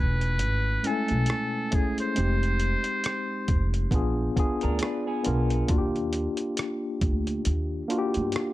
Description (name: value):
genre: R&B, neo-soul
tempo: 68 BPM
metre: 4/4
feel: swing 58% on 16ths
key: unclear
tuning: A4 = 439 Hz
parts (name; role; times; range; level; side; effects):
- trumpet with metal mute; melody; 0.0-3.7 s; G#4 to B#4; -30 LUFS; equal; analog delay
- tine electric piano; accompaniment; 0.0-8.5 s; G#3 to G#5; -28 LUFS; left 2 dB; medium stereo tremolo
- upright bass; bass; 0.0-8.3 s; E1 to G2; -27 LUFS; equal; none
- dusty soul sampler-style drum kit; drums; 0.2-8.5 s; hi-hat, kick drum, rim click; -28 LUFS; equal; none
- electric guitar through a small old amp; second line; 4.6-5.7 s; B3 to B4; -34 LUFS; right 3 dB; none
room: little or no reverb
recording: dark, warm production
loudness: -24 LUFS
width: side -16 dB against mid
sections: 0.0-8.5 A section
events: none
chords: 0.0 F#m9 (rootless); 2.2 Fm7; 3.9 A#7b9; 5.7 D#maj9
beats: 0.40 1.28 | 2.16 3.05 3.93 4.81 | 5.69 6.58 7.46 8.34